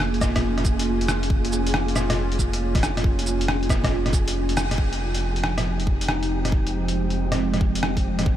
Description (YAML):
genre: future garage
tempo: 138 BPM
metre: 4/4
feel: swing 65% on 16ths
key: F minor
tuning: A4 = 441 Hz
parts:
  - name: warbly tape-like pad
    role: sustained chords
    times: 0.0-8.4 s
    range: F3 to F4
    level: -26 LUFS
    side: right 2 dB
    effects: chorus, built-in reverb, phaser, sidechain pumping
  - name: warm sub bass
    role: bass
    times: 0.0-8.4 s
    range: F1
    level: -26 LUFS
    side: equal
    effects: sidechain pumping
  - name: lo-fi sampler-style drum kit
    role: drums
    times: 0.0-8.2 s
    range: cabasa, hi-hat, rim click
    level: -26 LUFS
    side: equal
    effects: overdrive
  - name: flickering grainy texture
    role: texture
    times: 0.0-8.4 s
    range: G4 to Ab5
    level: -36 LUFS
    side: equal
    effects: built-in reverb
  - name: electronic kick drum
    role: drums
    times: 0.2-8.4 s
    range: none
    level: -22 LUFS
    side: equal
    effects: none
room: light reverb, digital ambience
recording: vinyl crackle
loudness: -20 LUFS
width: side -11 dB against mid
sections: 0.0-4.8 A section; 4.8-8.4 B section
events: band accent 4.6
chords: 0.0 Db6/F; 4.8 Fm7